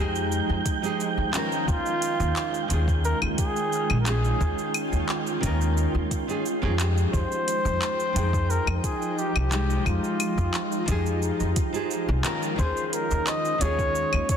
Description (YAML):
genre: sunset chillout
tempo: 88 BPM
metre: 4/4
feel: straight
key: F minor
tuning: A4 = 440 Hz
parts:
  - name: nylon-string guitar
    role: accompaniment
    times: 0.0-14.4 s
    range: Eb3 to G5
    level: -31 LUFS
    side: moving between left 5 dB and right 4 dB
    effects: auto-pan, digital delay
  - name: shimmering ambient pad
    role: sustained chords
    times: 0.0-14.4 s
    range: Eb3 to G5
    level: -31 LUFS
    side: right 2 dB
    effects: chorus, built-in reverb
  - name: upright bass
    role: bass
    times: 0.0-14.2 s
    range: Bb1 to F2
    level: -25 LUFS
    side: equal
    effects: none
  - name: wind-like tuned noise texture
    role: texture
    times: 0.0-12.6 s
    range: G5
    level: -36 LUFS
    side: right 6 dB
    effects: built-in reverb
  - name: smooth R&B drum kit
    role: drums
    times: 0.2-14.4 s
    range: cabasa, claves, handclaps, hi-hat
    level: -32 LUFS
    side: left 1 dB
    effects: small room ambience
  - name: electronic kick drum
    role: drums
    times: 0.7-14.4 s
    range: none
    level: -28 LUFS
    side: equal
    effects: small room ambience
  - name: warm flugelhorn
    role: melody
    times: 1.7-14.4 s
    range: F4 to Eb5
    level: -29 LUFS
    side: equal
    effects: vintage 12-bit sampler grit, digital delay
room: moderate lush hall reverb, RT60 2.5 s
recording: dense, heavily limited modern master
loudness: -23 LUFS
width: side -8 dB against mid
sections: 0.0-12.6 A section; 12.6-14.4 B section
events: none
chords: 0.0 Fm9; 1.7 Eb9sus4; 6.8 Fm9; 12.6 Eb9sus4